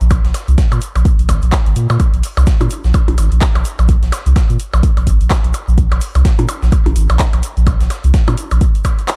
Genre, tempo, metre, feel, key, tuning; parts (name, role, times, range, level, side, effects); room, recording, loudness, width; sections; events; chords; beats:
minimal techno; 127 BPM; 4/4; swing 59% on 16ths; A4 = 440 Hz
saturated sub bass; bass; 0.0-8.6 s; Ab1 to Bb2; -15 LUFS; equal; sidechain pumping
breakbeat sampler-style drum kit; drums; 0.0-9.2 s; hi-hat, snare drum; -35 LUFS; equal; sidechain pumping on hats, high-pass filter on hats, high-pass filter on snare, high-pass filter on room
egg shaker; percussion; 0.0-9.2 s; -38 LUFS; equal
booming analog drum machine; drums; 0.1-9.2 s; handclaps, hi-hat; -27 LUFS; equal
electronic kick drum; drums; 0.1-9.0 s; -16 LUFS; equal
percussion blips; percussion; 0.1-9.2 s; -27 LUFS; equal; digital delay
little or no reverb; dark, warm production; -14 LUFS; mono
0.0-9.2 A section
| 0.11 0.58 1.05 1.52 | 2.00 2.47 2.94 3.42 | 3.89 4.36 4.83 5.30 | 5.78 6.25 6.72 7.19 | 7.67 8.14 8.61 9.08